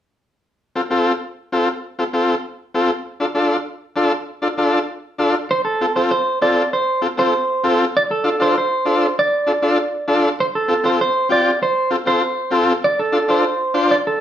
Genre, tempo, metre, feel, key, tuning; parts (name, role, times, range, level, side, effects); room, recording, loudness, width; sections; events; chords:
latin; 196 BPM; 4/4; straight; F major; A4 = 439 Hz
overdriven combo organ; accompaniment; 0.8-14.0 s; C4 to C5; -18 LUFS; left 1 dB
clean electric guitar; melody; 5.5-14.2 s; A4 to D5; -18 LUFS; right 2 dB; spring reverb
wet studio reverb, RT60 0.7 s; band playing live in one room; -16 LUFS; side -10 dB against mid
0.6-5.5 A section; 5.5-14.2 B section
0.6 F; 3.1 Dm; 5.5 F; 7.9 Dm; 10.4 F; 12.8 Dm